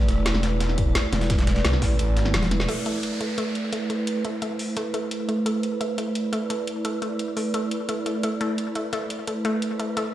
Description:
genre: dark technical drum and bass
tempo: 173 BPM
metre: 4/4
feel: straight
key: A minor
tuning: A4 = 436 Hz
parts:
  - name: swarming drone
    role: sustained chords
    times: 0.0-10.1 s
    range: A3 to D5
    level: -27 LUFS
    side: right 2 dB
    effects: built-in reverb, sidechain pumping
  - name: phased detuned saw bass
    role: bass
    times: 0.0-2.3 s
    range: E1 to C2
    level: -23 LUFS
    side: equal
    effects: phaser, overdrive, sidechain pumping
  - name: breakbeat sampler-style drum kit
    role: drums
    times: 0.0-2.7 s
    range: hi-hat, snare drum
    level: -33 LUFS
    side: equal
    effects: high-pass filter on snare, high-pass filter on hats
  - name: drum and bass drum kit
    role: drums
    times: 0.1-10.0 s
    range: hi-hat, snare drum, toms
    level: -30 LUFS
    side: equal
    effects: none
  - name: electronic kick drum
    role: drums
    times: 0.8-1.9 s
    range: none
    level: -23 LUFS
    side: equal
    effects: none
  - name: pulsing pluck wobble bass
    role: bass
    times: 1.1-2.7 s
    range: E1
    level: -24 LUFS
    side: equal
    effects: chorus
  - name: analog pluck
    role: arpeggios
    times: 2.7-10.1 s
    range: A3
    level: -30 LUFS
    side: left 2 dB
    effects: chorus, sidechain pumping, digital delay
  - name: downlifter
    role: sound effects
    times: 2.7-5.5 s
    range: none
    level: -36 LUFS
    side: equal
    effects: none
room: moderate digital room reverb, RT60 1.3 s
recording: played on a big sound system in a bare room, large studio reverb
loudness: -22 LUFS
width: side -13 dB against mid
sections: 0.0-2.7 A section; 2.7-10.1 B section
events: drop 0.0-2.7; kick drops out 2.0-2.7; drum fill 2.3-2.7; band accent 2.6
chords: 0.0 Asus2; 2.7 Amadd9

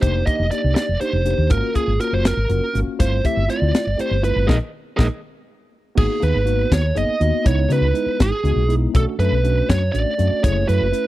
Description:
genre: electric jazz fusion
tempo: 81 BPM (dotted quarters)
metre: 6/8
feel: straight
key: G# phrygian from 6.0 s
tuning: A4 = 440 Hz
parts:
  - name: biting lead guitar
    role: melody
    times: 0.0-11.1 s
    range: Ab4 to E5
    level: -22 LUFS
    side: right 3 dB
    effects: overdrive, slapback echo
  - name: tine electric piano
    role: accompaniment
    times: 0.0-11.1 s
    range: Ab3 to B4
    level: -25 LUFS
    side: left 1 dB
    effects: medium stereo tremolo, wide subtle chorus
  - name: woody fretless electric bass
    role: bass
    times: 0.0-10.9 s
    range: F1 to C#3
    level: -19 LUFS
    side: equal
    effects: none
  - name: crisp fusion drum kit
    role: drums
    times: 0.0-11.0 s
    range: crash cymbal, hi-hat, kick drum, snare drum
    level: -19 LUFS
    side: left 1 dB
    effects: none
room: small room ambience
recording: dry, close 1970s-style studio recording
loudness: -16 LUFS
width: side -15 dB against mid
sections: 0.0-6.0 A section; 6.0-11.1 B section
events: band accent 4.5-6.0; drum fill 5.2-6.0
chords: 0.0 F13sus4; 1.5 Ab13sus4; 3.0 G13sus4; 4.5 Bb7sus4; 5.2 N.C.; 6.0 G#m9; 7.5 C#m9; 8.9 Bm9; 10.4 F#m9

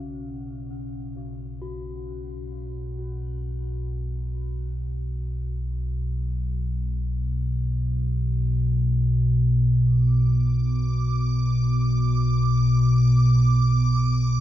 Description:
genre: dark ambient drone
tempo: free time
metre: none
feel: none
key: B minor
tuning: A4 = 440 Hz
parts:
  - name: gamelan-type bronze metallophone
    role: arpeggios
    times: 0.0-7.1 s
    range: C#3 to F#4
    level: -39 LUFS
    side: left 4 dB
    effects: tape echo, shimmer reverb
  - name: deep rumbling drone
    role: drone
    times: 0.0-14.4 s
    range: B1 to B2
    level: -21 LUFS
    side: equal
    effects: built-in reverb
  - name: icy glass pad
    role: texture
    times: 10.3-14.4 s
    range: D6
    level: -33 LUFS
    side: right 4 dB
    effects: chorus, built-in reverb, shimmer reverb
room: wet huge ambient reverb, RT60 8.4 s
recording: dark, warm production, nothing above 7.5 kHz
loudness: -20 LUFS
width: side -13 dB against mid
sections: 0.0-14.4 A section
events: fade-in on bronze metallophone 0.0-14.4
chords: 0.0 B5; 9.8 Bm

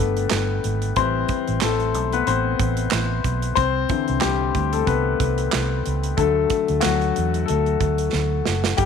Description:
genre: piano-driven pop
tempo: 92 BPM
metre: 4/4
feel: swing 56% on 16ths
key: unclear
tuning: A4 = 440 Hz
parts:
  - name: clear concert grand piano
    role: accompaniment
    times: 0.0-8.9 s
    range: D3 to C5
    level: -22 LUFS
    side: left 10 dB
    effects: none
  - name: vintage muted fingered electric bass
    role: bass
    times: 0.0-8.9 s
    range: F#1 to E2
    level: -24 LUFS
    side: right 3 dB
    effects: none
  - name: modern studio drum kit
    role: drums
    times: 0.2-8.9 s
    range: handclaps, hi-hat, kick drum, snare drum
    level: -26 LUFS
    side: right 7 dB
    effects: none
room: light reverb, small room ambience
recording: 1960s-style stereo with parts hard left and right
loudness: -19 LUFS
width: side -7 dB against mid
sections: 0.0-8.9 A section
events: grand piano solo 0.0-8.9; drum fill 8.1-8.8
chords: 0.0 G; 1.0 Am7; 3.6 Cadd9; 6.2 D

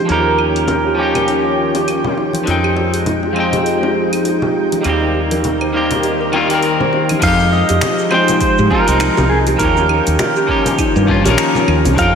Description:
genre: sunset chillout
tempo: 101 BPM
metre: 4/4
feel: swing 58% on 16ths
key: F minor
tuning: A4 = 442 Hz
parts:
  - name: pedal steel guitar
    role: melody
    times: 0.0-2.1, 7.2-12.2 s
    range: G4 to F5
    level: -17 LUFS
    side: right 1 dB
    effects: tape echo
  - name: clean electric guitar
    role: accompaniment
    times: 0.0-12.2 s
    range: Eb3 to G5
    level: -18 LUFS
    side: moving between left 5 dB and right 4 dB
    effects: auto-pan, tape echo
  - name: soft string machine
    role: sustained chords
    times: 0.0-12.2 s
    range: Eb3 to G5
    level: -20 LUFS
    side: left 1 dB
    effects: ensemble chorus
  - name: kalimba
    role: arpeggios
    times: 0.0-12.1 s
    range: Eb4 to G5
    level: -21 LUFS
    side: right 2 dB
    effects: low-pass filter, tape echo
  - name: woody fretless electric bass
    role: bass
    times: 0.0-12.2 s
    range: Bb1 to Ab2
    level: -18 LUFS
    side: equal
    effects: wide subtle chorus
  - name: deep house drum kit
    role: drums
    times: 0.1-12.1 s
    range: claves, crash cymbal, finger snaps, hi-hat, shaker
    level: -24 LUFS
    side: right 1 dB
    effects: low-pass filter on perc, low-pass filter on snare, low-pass filter on hats, low-pass filter on cymbals, low-pass filter on room
  - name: bongos and congas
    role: percussion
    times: 0.1-12.0 s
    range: none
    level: -25 LUFS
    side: left 2 dB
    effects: none
  - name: electronic kick drum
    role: drums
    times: 7.2-12.1 s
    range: none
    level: -21 LUFS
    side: equal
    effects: none
room: wet lush hall reverb, RT60 2.5 s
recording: dreamy mix soaked in reverb, faint mains hum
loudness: -12 LUFS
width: side -6 dB against mid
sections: 0.0-7.2 A section; 7.2-12.2 B section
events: none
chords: 0.1 Eb9; 2.5 Fm9; 4.8 Cm7/Eb; 7.2 Fm9; 9.6 Eb9

